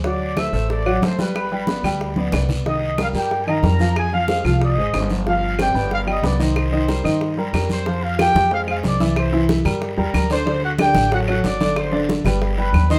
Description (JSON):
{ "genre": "latin, salsa", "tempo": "184 BPM", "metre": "4/4", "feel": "straight", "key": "C minor", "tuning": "A4 = 440 Hz", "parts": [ { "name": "mellow trumpet section", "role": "melody", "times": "0.0-13.0 s", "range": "F#4 to E6", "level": "-25 LUFS", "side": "equal", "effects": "none" }, { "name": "warm upright piano", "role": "accompaniment", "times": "0.0-13.0 s", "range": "D3 to G5", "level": "-24 LUFS", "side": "equal", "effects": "none" }, { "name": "upright bass", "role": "bass", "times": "0.0-13.0 s", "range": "G1 to G2", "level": "-25 LUFS", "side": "equal", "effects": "none" }, { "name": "bongos", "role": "percussion", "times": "0.0-12.9 s", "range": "none", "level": "-33 LUFS", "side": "equal", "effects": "none" }, { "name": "congas", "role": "percussion", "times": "0.0-13.0 s", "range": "none", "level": "-28 LUFS", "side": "equal", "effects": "none" }, { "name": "guiro", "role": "percussion", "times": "0.0-13.0 s", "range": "none", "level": "-37 LUFS", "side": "equal", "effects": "none" }, { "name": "claves", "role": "percussion", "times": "0.4-12.9 s", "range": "none", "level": "-33 LUFS", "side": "equal", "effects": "none" } ], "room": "moderate studio ambience, RT60 0.5 s", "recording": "none", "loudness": "-20 LUFS", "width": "mono", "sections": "0.0-7.9 A section; 7.9-13.0 B section", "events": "drum fill 2.2-2.7", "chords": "0.0 D7; 1.3 G; 2.7 Cm7; 4.0 Fm7; 5.3 G7sus4; 5.9 G7; 6.6 Cm7; 7.9 Fm; 9.2 C7; 10.5 D7; 11.8 Gsus4; 12.4 G" }